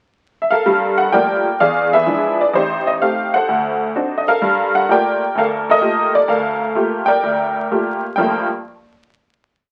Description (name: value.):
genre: solo jazz.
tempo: 128 BPM.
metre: 4/4.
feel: swing 68% on 8ths.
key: G minor.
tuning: A4 = 440 Hz.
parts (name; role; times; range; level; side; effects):
honky-tonk upright piano; solo; 0.4-8.5 s; A1 to G5; -17 LUFS; equal; none.
room: moderate studio reverb, RT60 0.7 s.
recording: very old 78 rpm record, vinyl crackle.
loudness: -17 LUFS.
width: mono.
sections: 0.0-0.7 pickup bar; 0.7-8.2 A section; 8.2-9.7 final chord.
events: none.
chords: 0.0 A5; 0.7 Gm9; 1.6 E7b9; 2.5 Am7b5; 3.5 D7b9; 4.4 Gm9.